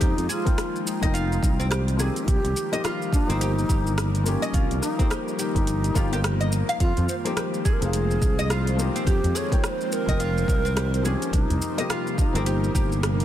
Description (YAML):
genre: organic downtempo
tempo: 106 BPM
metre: 4/4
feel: swing 60% on 16ths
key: F minor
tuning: A4 = 440 Hz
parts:
  - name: breathy bass bansuri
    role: melody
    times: 0.0-13.0 s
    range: C4 to Db5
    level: -30 LUFS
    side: right 1 dB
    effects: tape echo
  - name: felt-muted upright piano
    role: accompaniment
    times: 0.0-13.2 s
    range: F3 to G5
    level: -31 LUFS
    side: left 6 dB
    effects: sidechain pumping, ping-pong delay
  - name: airy breathy pad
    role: sustained chords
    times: 0.0-13.2 s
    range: C3 to C5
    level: -32 LUFS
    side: right 1 dB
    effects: chorus, sidechain pumping
  - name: oud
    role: arpeggios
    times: 0.0-12.9 s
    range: C4 to F5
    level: -32 LUFS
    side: equal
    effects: ping-pong delay
  - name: sustaining fretless electric bass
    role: bass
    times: 0.0-13.2 s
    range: F1 to F2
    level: -25 LUFS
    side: equal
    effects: sidechain pumping
  - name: deep house drum kit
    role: drums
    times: 0.0-13.2 s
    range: hi-hat, rim click, shaker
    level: -32 LUFS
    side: equal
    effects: soft clipping on snare
  - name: electronic kick drum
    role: drums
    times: 0.0-12.9 s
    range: none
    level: -23 LUFS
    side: equal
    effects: none
  - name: udu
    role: percussion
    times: 7.0-11.6 s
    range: none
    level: -27 LUFS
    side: equal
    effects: none
room: light reverb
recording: dense, heavily limited modern master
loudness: -21 LUFS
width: side -12 dB against mid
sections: 0.0-13.2 A section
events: none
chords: 0.0 Fm7; 2.3 Cm7; 6.8 Fm7; 11.3 Cm7